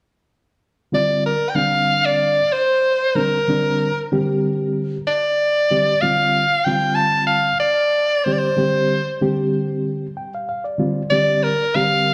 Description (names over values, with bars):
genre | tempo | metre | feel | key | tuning
jazz | 94 BPM | 4/4 | straight | Bb major | A4 = 440 Hz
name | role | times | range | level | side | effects
clear soprano saxophone | melody | 0.9-12.1 s | Bb4 to A5 | -19 LUFS | equal | slapback echo
reed electric piano | accompaniment | 0.9-12.1 s | D3 to G5 | -23 LUFS | equal | harmonic tremolo
room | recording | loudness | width
light reverb, studio reverb | live gig heard through the venue's PA, club ambience | -19 LUFS | mono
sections
0.9-12.1 A section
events
reed electric piano fill 9.9-11.1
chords
0.9 Bbadd9 (rootless)